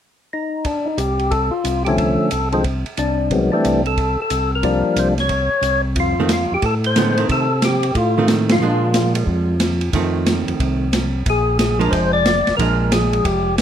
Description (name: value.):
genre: soul jazz organ trio.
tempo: 181 BPM.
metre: 4/4.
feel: swing 64% on 8ths.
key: F mixolydian.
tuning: A4 = 441 Hz.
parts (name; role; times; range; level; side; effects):
percussive tonewheel organ; melody; 0.3-9.1, 11.3-13.6 s; D3 to D5; -18 LUFS; left 2 dB; slow rotary speaker, overdrive.
open jazz drum kit; drums; 0.6-13.6 s; hi-hat, kick drum, ride cymbal, snare drum; -22 LUFS; right 1 dB; none.
tonewheel organ; bass; 1.0-13.6 s; F1 to C3; -20 LUFS; equal; overdrive, chorus vibrato, slow rotary speaker.
archtop guitar, miked and amplified; accompaniment; 6.2-13.5 s; D3 to D4; -21 LUFS; right 4 dB; none.
room: light reverb.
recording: none.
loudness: -16 LUFS.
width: side -9 dB against mid.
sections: 0.7-6.0 A section; 6.0-13.6 B section.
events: band accent 8.5.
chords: 0.0 N.C.; 0.7 F; 5.3 N.C.; 6.0 F7; 8.6 Bb7; 9.9 F7; 11.3 Bb7.